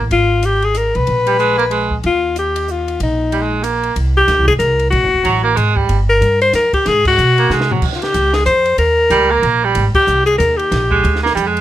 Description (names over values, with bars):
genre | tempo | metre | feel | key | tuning
jazz, small-group swing and bop | 187 BPM | 3/4 | swing 62% on 8ths | unclear | A4 = 442 Hz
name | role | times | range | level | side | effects
breathy baritone saxophone | second line | 0.0-11.6 s | F#3 to Bb3 | -16 LUFS | right 6 dB | none
upright bass | bass | 0.0-11.6 s | D1 to Db3 | -18 LUFS | equal | none
breathy alto saxophone | melody | 0.1-11.3 s | Eb4 to C5 | -14 LUFS | left 2 dB | none
compact cocktail drum kit | drums | 0.1-11.6 s | crash cymbal, hi-hat, kick drum, ride cymbal, snare drum, toms | -25 LUFS | equal | none
room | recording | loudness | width
light reverb | close, detailed microphones | -12 LUFS | side -13 dB against mid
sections
0.0-4.0 A section; 4.0-11.6 B section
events
band accent 7.0, 9.9; drum fill 7.5-7.8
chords
0.1 Absus2; 1.1 Abmadd9/Bb; 2.0 Ebadd9; 4.0 Abmaj9 (rootless); 4.9 D; 5.9 Gm7; 6.9 Ab7; 7.8 Dbmaj7#11; 8.8 Eb5; 9.8 Abmaj7; 10.7 Bb6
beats
| 0.10 0.42 0.75 | 1.07 1.39 1.71 | 2.04 2.36 2.68 | 3.00 3.32 3.65 | 3.97 4.29 4.61 | 4.93 5.25 5.58 | 5.90 6.22 6.54 | 6.86 7.18 7.50 | 7.82 8.15 8.47 | 8.79 9.11 9.43 | 9.75 10.07 10.40 | 10.72 11.04 11.36